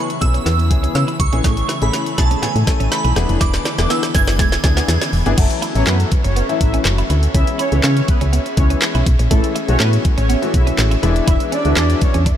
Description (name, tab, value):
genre	dance-pop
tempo	122 BPM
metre	4/4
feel	straight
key	F# minor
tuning	A4 = 438 Hz
part	shimmering bell with halo	melody	0.0-5.1 s	G#5 to G#6	-24 LUFS	right 4 dB	ensemble chorus, ping-pong delay
part	clear grand piano	accompaniment	0.0-12.2 s	E3 to A4	-23 LUFS	left 6 dB	analog chorus
part	airy breathy pad	sustained chords	0.0-12.4 s	C#3 to E5	-27 LUFS	equal	chorus, sidechain pumping
part	twelve-string electric guitar	riff	0.0-12.4 s	G#3 to F#4	-28 LUFS	right 6 dB	wide subtle chorus
part	smooth R&B drum kit	drums	0.1-12.4 s	crash cymbal, handclaps, hi-hat, kick drum, snare drum	-18 LUFS	equal	none
part	solid FM bass	bass	0.2-12.3 s	E1 to C#3	-17 LUFS	equal	sidechain pumping
part	soft supersaw	melody	5.4-12.1 s	A3 to E5	-24 LUFS	right 1 dB	wide subtle chorus, sidechain pumping, ping-pong delay
room	light reverb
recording	none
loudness	-14 LUFS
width	side -10 dB against mid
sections	0.0-5.4 A section; 5.4-12.4 B section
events	build-up 0.0-5.4; drum fill 0.0-5.4; drop 5.4-12.4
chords	0.0 C#m7; 1.4 Amaj7; 3.2 E7; 5.4 F#m7; 7.3 C#m7; 9.3 Amaj7; 11.0 E7